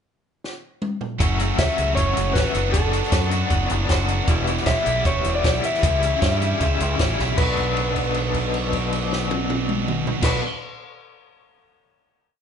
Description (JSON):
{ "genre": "indie rock", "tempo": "156 BPM", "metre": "4/4", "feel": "straight", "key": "B minor", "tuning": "A4 = 439 Hz", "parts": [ { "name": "compact cocktail drum kit", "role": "drums", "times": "0.4-10.3 s", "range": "crash cymbal, hi-hat, kick drum, snare drum, toms", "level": "-24 LUFS", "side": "equal", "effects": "none" }, { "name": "high-gain distorted guitar", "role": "riff", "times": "1.2-10.4 s", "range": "E2 to F#4", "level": "-27 LUFS", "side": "right 7 dB", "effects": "distortion" }, { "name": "overdriven electric guitar", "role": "riff", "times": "1.2-10.4 s", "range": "B2 to F#4", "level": "-26 LUFS", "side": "left 6 dB", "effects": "tremolo" }, { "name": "growling fingered electric bass", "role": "bass", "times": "1.2-10.4 s", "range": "E1 to G2", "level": "-24 LUFS", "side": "equal", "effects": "overdrive" }, { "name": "electric guitar through a small old amp", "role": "melody", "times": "1.6-10.4 s", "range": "A4 to E5", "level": "-26 LUFS", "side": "left 2 dB", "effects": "none" } ], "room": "light reverb", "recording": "band playing live in one room, nothing above 10.9 kHz", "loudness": "-19 LUFS", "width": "side -7 dB against mid", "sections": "0.0-1.2 pickup bar; 1.2-7.4 pre-chorus; 7.4-10.5 final chord", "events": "drum fill 0.4-1.2, 7.2; held note 7.4-10.2", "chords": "0.0 N.C.; 1.2 F#m7; 2.6 Bm7/F#; 4.3 Em; 5.8 C#dim; 7.4 Bm" }